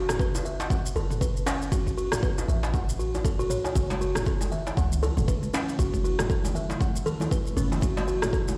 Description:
afro house; 118 BPM; 4/4; swing 58% on 16ths; F# minor; A4 = 440 Hz
buzzing kalimba; arpeggios; 0.0-8.5 s; C#4 to F#5; -34 LUFS; equal; sidechain pumping, digital delay
warm 808-style bass; bass; 0.0-8.6 s; F#1 to C#2; -32 LUFS; equal; sidechain pumping
deep house drum kit; drums; 0.1-8.6 s; rim click, shaker, toms; -36 LUFS; equal; small room ambience
djembe; percussion; 0.1-8.6 s; -37 LUFS; equal
electronic kick drum; drums; 0.2-8.4 s; -29 LUFS; equal; overdrive, small room ambience
ethereal airy pad; sustained chords; 4.7-8.6 s; C#3 to E4; -39 LUFS; equal; ensemble chorus, built-in reverb, phaser, sidechain pumping
congas; percussion; 3.8-8.6 s; -38 LUFS; equal
light reverb, digital ambience; played on a big sound system in a bare room, stone room reverb; -27 LUFS; mono
0.0-8.6 A section
0.0 F#m7
0.20 0.70 1.21 | 1.72 2.23 2.74 3.25 | 3.75 4.26 4.77 5.28 | 5.79 6.30 6.80 7.31 | 7.82 8.33

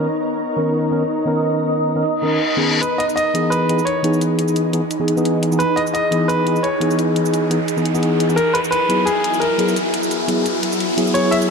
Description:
liquid drum and bass; 173 BPM; 4/4; swing 54% on 16ths; E lydian; A4 = 440 Hz
mellow tine electric piano; accompaniment; 0.0-11.5 s; D#3 to A#4; -20 LUFS; equal; low-pass filter, tape echo
shimmering ambient pad; sustained chords; 0.0-11.5 s; E3 to D#5; -21 LUFS; equal; chorus, built-in reverb
reverse cymbal and riser; sound effects; 2.2-11.5 s; -27 LUFS; left 2 dB
bright concert grand piano; melody; 2.8-11.4 s; G#4 to E5; -20 LUFS; equal; ping-pong delay
electronic hi-hat and shaker; drums; 2.8-11.5 s; -29 LUFS; equal
light reverb, digital ambience; -16 LUFS; side -5 dB against mid
0.0-2.8 A section; 2.8-11.5 B section
filter sweep on ambient pad 0.0-2.8, 2.8-11.5; filter sweep 0.0-2.8; reverse cymbal 2.2-2.8; build-up 2.8-11.5; riser 2.8-11.5
0.0 Bmaj9; 2.8 Emaj7; 8.4 F#9sus4
| 0.05 0.40 0.75 1.09 | 1.44 1.79 2.13 2.48 | 2.83 3.17 3.52 3.87 | 4.21 4.56 4.91 5.25 | 5.60 5.95 6.29 6.64 | 6.99 7.34 7.68 8.03 | 8.38 8.72 9.07 9.42 | 9.76 10.11 10.46 10.80 | 11.15 11.50

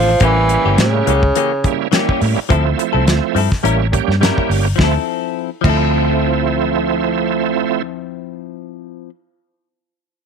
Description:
straight-eighth soul blues; 105 BPM; 4/4; swing 56% on 16ths; D minor; A4 = 438 Hz
mellow tenor saxophone; melody; 0.0-1.9 s; C#3 to F3; -16 LUFS; right 1 dB
bright tonewheel organ; accompaniment; 0.0-7.8 s; F3 to G4; -19 LUFS; right 14 dB; slow rotary speaker, overdrive, chorus vibrato
vintage muted fingered electric bass; bass; 0.0-8.5 s; G1 to A2; -17 LUFS; equal
direct-recorded clean electric guitar; stabs; 0.1-9.1 s; E3 to Bb4; -21 LUFS; left 13 dB
damped 70s drum kit; drums; 0.2-5.8 s; crash cymbal, hi-hat, kick drum, snare drum; -18 LUFS; left 1 dB
light reverb, studio ambience; 1960s-style stereo with parts hard left and right; -13 LUFS; side -6 dB against mid
0.0-4.8 A section; 4.8-7.1 B section
0.2 A7b9; 2.5 Dm9; 3.6 A7b9; 4.8 Dm9
| 0.22 0.79 1.36 1.93 | 2.50 3.07 3.64 4.21 | 4.78 5.35 5.92 6.49

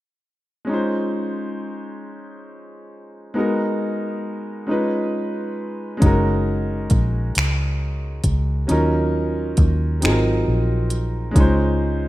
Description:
slow six-eight R&B; 45 BPM (dotted quarters); 6/8; straight; Db major; A4 = 441 Hz
clear baby grand piano; accompaniment; 0.6-12.1 s; Gb3 to C5; -22 LUFS; equal
vintage muted fingered electric bass; bass; 6.0-12.1 s; Gb1 to Eb2; -20 LUFS; equal
smooth R&B drum kit; drums; 6.0-11.6 s; finger snaps, hi-hat, kick drum; -19 LUFS; equal
light reverb; rough home demo mix; -18 LUFS; side -16 dB against mid
0.7-11.4 A section
kick muted 10.0-11.4
0.7 Dbmaj9; 3.4 Abm7; 4.7 Db9; 6.0 Gb6; 8.7 Ebm9; 10.0 Ab13; 11.4 Dbmaj9
| 0.68 2.02 | 3.35 4.68 | 6.02 7.35 | 8.68 10.02 | 11.35

